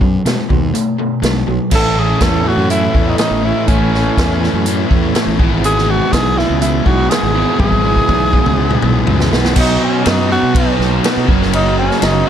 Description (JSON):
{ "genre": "classic rock", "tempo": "122 BPM", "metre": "4/4", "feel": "straight", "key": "unclear", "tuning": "A4 = 444 Hz", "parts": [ { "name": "crunchy overdriven guitar", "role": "riff", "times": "0.0-12.3 s", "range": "F#2 to E4", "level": "-20 LUFS", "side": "left 11 dB", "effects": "none" }, { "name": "overdriven semi-hollow guitar", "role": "riff", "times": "0.0-12.3 s", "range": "E2 to B3", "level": "-20 LUFS", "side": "right 10 dB", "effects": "harmonic tremolo" }, { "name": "fuzz fingered electric bass", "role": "bass", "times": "0.0-12.2 s", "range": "F#1 to B2", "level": "-18 LUFS", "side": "equal", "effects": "overdrive" }, { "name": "vintage drum kit", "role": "drums", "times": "0.0-12.1 s", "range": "crash cymbal, hi-hat, kick drum, ride cymbal, snare drum, toms", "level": "-17 LUFS", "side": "equal", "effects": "none" }, { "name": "crunchy overdriven guitar", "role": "riff", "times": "1.7-12.3 s", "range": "F#2 to F#4", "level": "-20 LUFS", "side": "equal", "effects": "none" }, { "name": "breathy tenor saxophone", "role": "melody", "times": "1.8-12.3 s", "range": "C#4 to A4", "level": "-18 LUFS", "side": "equal", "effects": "none" } ], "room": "light reverb, small room ambience", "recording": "none", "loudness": "-11 LUFS", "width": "side -9 dB against mid", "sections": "0.0-1.7 A section; 1.7-9.6 B section; 9.6-12.3 C section", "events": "drum fill 7.6-9.6; tenor saxophone solo 9.6-12.3", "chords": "0.0 B5; 1.7 A; 5.4 E/G#; 9.6 B; 11.3 F#" }